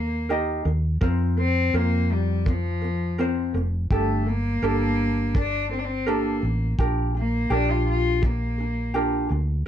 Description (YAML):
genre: acoustic pop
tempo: 83 BPM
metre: 4/4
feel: straight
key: unclear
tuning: A4 = 439 Hz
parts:
  - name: warm cello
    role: melody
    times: 0.0-9.3 s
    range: F3 to F4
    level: -27 LUFS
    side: left 2 dB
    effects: none
  - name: ukulele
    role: accompaniment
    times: 0.0-9.6 s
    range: C4 to Eb5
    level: -26 LUFS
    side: right 1 dB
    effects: none
  - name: hollow-body short-scale fingered electric bass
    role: bass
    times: 0.0-9.6 s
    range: F1 to F2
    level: -25 LUFS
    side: equal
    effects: none
  - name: kick drum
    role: drums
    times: 1.0-8.4 s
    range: none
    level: -22 LUFS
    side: equal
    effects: none
room: light reverb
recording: dark, warm production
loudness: -21 LUFS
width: side -10 dB against mid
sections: 0.0-9.7 A section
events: none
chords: 0.0 Eb; 1.0 Fsus4; 3.9 Gmadd9; 6.8 Bb6